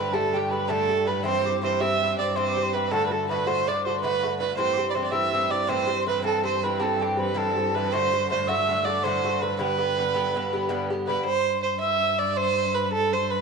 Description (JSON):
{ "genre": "celtic folk", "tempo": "108 BPM (dotted quarters)", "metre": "9/8", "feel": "straight", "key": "G major", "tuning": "A4 = 439 Hz", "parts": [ { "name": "dark fiddle", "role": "melody", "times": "0.0-13.4 s", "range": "G4 to E5", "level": "-25 LUFS", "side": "right 9 dB", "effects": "none" }, { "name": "mellow wooden whistle", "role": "second line", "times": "0.0-13.4 s", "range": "G5 to E6", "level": "-29 LUFS", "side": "left 11 dB", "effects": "none" }, { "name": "Irish bouzouki", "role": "accompaniment", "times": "0.0-11.3 s", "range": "G2 to G4", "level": "-29 LUFS", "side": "equal", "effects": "none" }, { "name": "clear cello", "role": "drone", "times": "0.0-13.4 s", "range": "G2", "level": "-33 LUFS", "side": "left 4 dB", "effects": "stereo widening" } ], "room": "wet echo chamber reverb, RT60 2.4 s", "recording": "1960s-style stereo with parts hard left and right", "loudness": "-22 LUFS", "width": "side -5 dB against mid", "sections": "0.0-11.3 A section; 11.3-13.4 A section", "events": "none", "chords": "0.0 Dsus4; 1.2 C; 2.9 D; 4.6 Am7; 6.2 C; 7.9 D; 9.6 G; 11.3 N.C.", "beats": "0.14 0.69 | 1.25 1.80 2.35 | 2.91 3.46 4.02 | 4.58 5.13 5.69 | 6.24 6.80 7.36 | 7.91 8.47 9.03 | 9.58 10.14 10.69 | 11.25 11.81 12.37 | 12.92" }